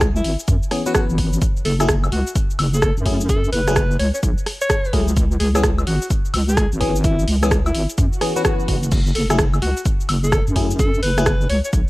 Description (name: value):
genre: UK garage, two-step garage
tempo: 128 BPM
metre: 4/4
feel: swing 64% on 16ths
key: unclear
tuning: A4 = 439 Hz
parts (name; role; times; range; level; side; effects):
- deep soft wobble bass; bass; 0.0-11.8 s; F#1 to F#2; -20 LUFS; equal; chorus
- electronic kick drum; drums; 0.0-11.8 s; none; -20 LUFS; equal; none
- punchy analog drum machine; drums; 0.0-11.8 s; crash cymbal, hi-hat, rim click, shaker, woodblock; -24 LUFS; equal; none
- breathy alto saxophone; melody; 0.2-11.7 s; E4 to C#5; -25 LUFS; equal; none
- FM electric piano; stabs; 0.7-11.3 s; E3 to B4; -25 LUFS; left 2 dB; chorus, phaser
- swell; sound effects; 8.1-8.9 s; none; -33 LUFS; right 4 dB; none
room: little or no reverb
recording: vinyl crackle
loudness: -16 LUFS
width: side -19 dB against mid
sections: 0.0-11.9 A section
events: swell 8.1-8.9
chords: 0.0 C#m7; 1.4 F#m9; 5.2 C#m7; 8.9 N.C.